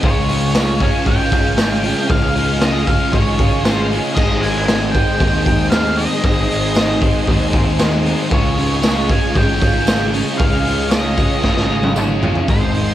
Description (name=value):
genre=rock, shoegaze and dream pop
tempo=116 BPM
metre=4/4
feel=straight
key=unclear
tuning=A4 = 440 Hz
part: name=string machine, violins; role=sustained chords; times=0.0-12.9 s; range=Ab4 to Db6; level=-26 LUFS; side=equal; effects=ensemble chorus, cassette tape
part: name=fingerpicked twelve-string acoustic guitar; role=arpeggios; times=0.0-12.9 s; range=Eb3 to F4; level=-31 LUFS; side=right 7 dB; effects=none
part: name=crunchy overdriven guitar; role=riff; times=0.0-12.9 s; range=Ab2 to F4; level=-21 LUFS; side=left 7 dB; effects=wide subtle chorus, cassette tape
part: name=raw garage guitar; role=riff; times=0.0-12.9 s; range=Ab2 to F4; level=-23 LUFS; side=right 8 dB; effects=overdrive, reverse reverb, cassette tape
part: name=growling fingered electric bass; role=bass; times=0.0-12.9 s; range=Ab1 to Eb2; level=-22 LUFS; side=equal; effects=overdrive
part: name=raw garage drum kit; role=drums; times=0.0-12.9 s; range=crash cymbal, hi-hat, kick drum, snare drum, toms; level=-17 LUFS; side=equal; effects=cassette tape
part: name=octave-fuzz lead guitar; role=melody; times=0.1-12.9 s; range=C5 to Ab5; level=-23 LUFS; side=equal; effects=distortion, analog delay
part: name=tambourine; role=percussion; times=0.6-12.1 s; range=none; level=-33 LUFS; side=right 9 dB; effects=none
room=light reverb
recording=home recording on cassette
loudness=-13 LUFS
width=side -12 dB against mid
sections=0.0-12.5 A section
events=drum fill 11.4-12.5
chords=0.0 Dbadd9; 4.2 Ab; 8.3 Dbadd9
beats=| 0.03 0.55 1.06 1.58 | 2.10 2.62 3.13 3.65 | 4.17 4.69 5.21 5.72 | 6.24 6.76 7.28 7.80 | 8.32 8.84 9.36 9.88 | 10.40 10.92 11.44 11.97 | 12.49